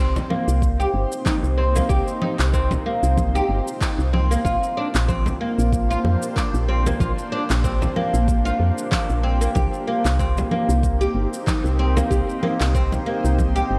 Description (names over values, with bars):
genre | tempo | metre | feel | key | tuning
organic downtempo | 94 BPM | 4/4 | swing 55% on 16ths | C minor | A4 = 440 Hz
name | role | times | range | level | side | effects
granular cloud pad | sustained chords | 0.0-13.8 s | Bb3 to C5 | -30 LUFS | equal | built-in reverb, sidechain pumping
oud | arpeggios | 0.0-13.6 s | Bb3 to G4 | -27 LUFS | equal | low-pass filter, analog delay
woody FM bass | bass | 0.0-13.8 s | G1 to F2 | -23 LUFS | equal | tube saturation, sidechain pumping
electronic shaker, congas and handclaps | drums | 0.2-13.7 s | none | -31 LUFS | equal | none
frame drum | percussion | 0.2-13.0 s | none | -31 LUFS | equal | none
electronic kick drum | drums | 0.6-13.5 s | none | -26 LUFS | equal | none
room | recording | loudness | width
moderate plate reverb, RT60 2.0 s | dreamy mix soaked in reverb | -21 LUFS | mono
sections
0.0-13.8 A section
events
none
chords
0.0 Cm7; 4.5 Bb69; 9.6 Cm7